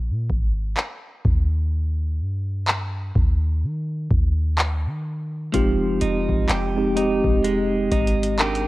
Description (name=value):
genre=contemporary R&B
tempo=63 BPM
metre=4/4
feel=swing 58% on 16ths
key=Eb major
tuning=A4 = 437 Hz
part: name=clean 808-style bass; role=bass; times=0.0-8.7 s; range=F1 to Eb3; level=-24 LUFS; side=equal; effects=none
part: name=booming analog drum machine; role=drums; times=0.3-8.7 s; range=handclaps, hi-hat, kick drum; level=-22 LUFS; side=equal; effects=none
part: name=mellow tine electric piano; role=accompaniment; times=5.5-8.7 s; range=Ab3 to Bb4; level=-21 LUFS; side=equal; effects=medium stereo tremolo
part: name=direct-recorded clean electric guitar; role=arpeggios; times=5.5-8.7 s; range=F3 to G4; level=-26 LUFS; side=right 4 dB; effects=spring reverb
room=little or no reverb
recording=worn, warbling old tape, cassette tape, warbly pitch drift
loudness=-20 LUFS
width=side -18 dB against mid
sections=0.0-8.7 A section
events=break 0.0-5.5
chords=0.0 Absus2; 1.2 Eb; 5.5 Fm9